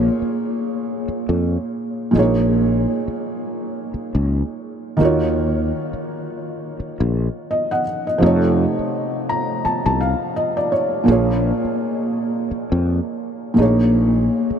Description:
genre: contemporary R&B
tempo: 84 BPM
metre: 4/4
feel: swing 58% on 16ths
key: Eb minor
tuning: A4 = 440 Hz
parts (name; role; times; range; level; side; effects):
- felt-muted upright piano; accompaniment; 0.0-14.6 s; Bb2 to Bb5; -19 LUFS; right 1 dB; none
- sustaining fretless electric bass; bass; 0.0-14.5 s; Bb1 to F2; -19 LUFS; left 1 dB; analog chorus
room: wet huge ambient reverb, RT60 9.1 s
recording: dreamy mix soaked in reverb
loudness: -17 LUFS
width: side -8 dB against mid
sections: 0.0-14.6 A section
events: felt piano fill 8.9-11.1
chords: 0.0 Bbm7; 2.1 Absus24/Bb; 5.0 Ebm9; 8.2 F7b13; 11.1 Bbm7; 13.6 Absus24/Bb

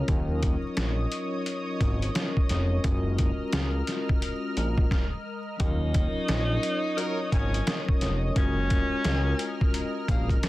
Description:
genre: hip hop, boom-bap hip-hop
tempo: 87 BPM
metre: 4/4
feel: swing 62% on 16ths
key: Eb minor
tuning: A4 = 438 Hz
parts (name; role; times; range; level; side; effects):
- vibraphone with soft mallets; accompaniment; 0.0-10.5 s; Gb3 to Db5; -32 LUFS; left 3 dB; cassette tape, high-pass filter, low-pass filter
- lush unison pad; sustained chords; 0.0-10.5 s; Bb4 to F6; -37 LUFS; right 1 dB; chorus, high-pass filter, low-pass filter
- fat analog bass; bass; 0.0-10.4 s; F1 to Eb2; -27 LUFS; equal; none
- trip hop sampler-style drum kit; drums; 0.1-10.5 s; hi-hat, kick drum, snare drum; -26 LUFS; equal; vintage 12-bit sampler grit
- breathy tenor saxophone; melody; 5.6-10.3 s; Bb3 to Eb4; -31 LUFS; equal; high-pass filter, low-pass filter, ping-pong delay
- warm horn section; stabs; 7.0-7.2 s; Gb3 to Bb4; -34 LUFS; equal; high-pass filter, low-pass filter, ping-pong delay
room: little or no reverb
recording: dense, heavily limited modern master, vinyl crackle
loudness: -24 LUFS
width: side -17 dB against mid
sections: 0.0-5.6 A section; 5.6-10.5 B section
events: stop 4.9-5.6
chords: 0.1 Ebm7; 2.8 Gbmaj7; 5.6 Ebm7; 8.4 Gbmaj7

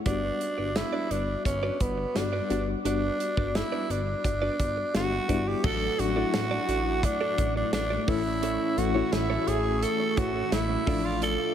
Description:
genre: 1980s-style pop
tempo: 86 BPM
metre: 4/4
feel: straight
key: unclear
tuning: A4 = 440 Hz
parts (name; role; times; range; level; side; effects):
- FM electric piano with tremolo; accompaniment; 0.0-11.5 s; E3 to F#4; -32 LUFS; left 6 dB; shimmer reverb
- growling tenor saxophone; melody; 0.1-11.5 s; B3 to A4; -29 LUFS; right 2 dB; tape echo, shimmer reverb
- direct-recorded clean electric guitar; riff; 0.1-11.5 s; C#4 to D5; -36 LUFS; right 5 dB; analog chorus, shimmer reverb
- chorused synth bass; bass; 0.1-11.4 s; G1 to A1; -32 LUFS; equal; none
- modern studio drum kit; drums; 0.1-11.4 s; crash cymbal, hi-hat, kick drum, snare drum; -31 LUFS; right 1 dB; gated reverb
- string machine, cellos; sustained chords; 5.6-11.5 s; A3 to D6; -34 LUFS; right 1 dB; phaser, ensemble chorus, shimmer reverb
room: light reverb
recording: none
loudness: -25 LUFS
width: side -9 dB against mid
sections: 0.0-5.6 A section; 5.6-11.5 B section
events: none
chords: 0.1 Gmaj7; 5.6 D/A; 8.1 A; 10.9 Dm/A

